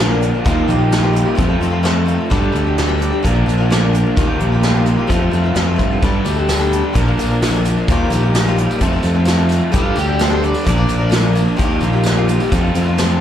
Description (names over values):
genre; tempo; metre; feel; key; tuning
folk rock and heartland rock; 129 BPM; 4/4; straight; unclear; A4 = 440 Hz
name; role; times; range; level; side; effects
picked swing-style acoustic guitar; accompaniment; 0.0-13.2 s; G2 to Bb4; -22 LUFS; left 5 dB; slapback echo
raw garage guitar; riff; 0.0-13.2 s; Bb2 to Bb4; -19 LUFS; right 1 dB; overdrive, spring reverb
fingered electric bass; bass; 0.0-13.2 s; Bb1 to G2; -17 LUFS; equal; none
soft brush drum kit; drums; 0.2-13.1 s; hi-hat, kick drum, snare drum; -20 LUFS; equal; none
tambourine; percussion; 6.3-13.2 s; none; -34 LUFS; right 2 dB; none
overdriven slide guitar; second line; 9.8-11.1 s; F4 to D5; -24 LUFS; equal; none
room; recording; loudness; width
studio reverb; live gig heard through the venue's PA, club reverb, lossy compression artefacts; -13 LUFS; side -10 dB against mid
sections
0.0-13.2 A section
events
none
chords
0.5 Ebadd9; 1.4 F; 2.3 Gsus2; 3.2 Bb; 4.2 Ebadd9; 5.1 F; 6.0 Gsus2; 7.0 Bb; 7.9 Ebadd9; 8.8 F; 9.7 Gsus2; 10.7 Bb; 11.6 Ebadd9; 12.5 F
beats
| 0.45 0.92 1.38 1.84 | 2.31 2.77 3.24 3.70 | 4.17 4.63 5.09 5.56 | 6.02 6.49 6.95 7.42 | 7.88 8.34 8.81 9.27 | 9.73 10.20 10.66 11.13 | 11.59 12.05 12.52 12.98